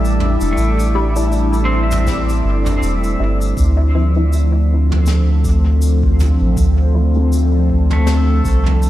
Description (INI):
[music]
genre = ambient dub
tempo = 80 BPM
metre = 4/4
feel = swing 57% on 16ths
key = D minor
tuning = A4 = 440 Hz
[part]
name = airy breathy pad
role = sustained chords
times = 0.0-8.9 s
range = F3 to A4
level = -20 LUFS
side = left 1 dB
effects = chorus, phaser
[part]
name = pedal steel guitar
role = arpeggios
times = 0.0-8.9 s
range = A3 to E5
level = -25 LUFS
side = right 1 dB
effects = diffuse ambient delay
[part]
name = soft dub sub bass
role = bass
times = 0.0-8.9 s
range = E1 to D2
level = -14 LUFS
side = equal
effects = none
[part]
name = soft brush drum kit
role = drums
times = 0.0-8.9 s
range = cabasa, snare drum, toms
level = -26 LUFS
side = equal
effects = dub echo
[part]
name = backwards swelling texture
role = texture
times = 0.0-3.6 s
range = D4 to D5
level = -33 LUFS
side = right 1 dB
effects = built-in reverb, lush chorus
[part]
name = filtered dub chord stab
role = stabs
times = 0.9-7.3 s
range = F3 to E4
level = -26 LUFS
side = left 2 dB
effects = phaser, analog chorus, cassette tape, dub echo
[part]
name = electronic kick drum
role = drums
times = 2.1-8.6 s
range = none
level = -21 LUFS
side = equal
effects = overdrive
[sound]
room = light reverb, small room ambience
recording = none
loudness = -13 LUFS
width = side -14 dB against mid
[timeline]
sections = 0.0-3.6 A section; 3.6-8.9 A section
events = none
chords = 0.0 A7sus4; 3.6 Dm7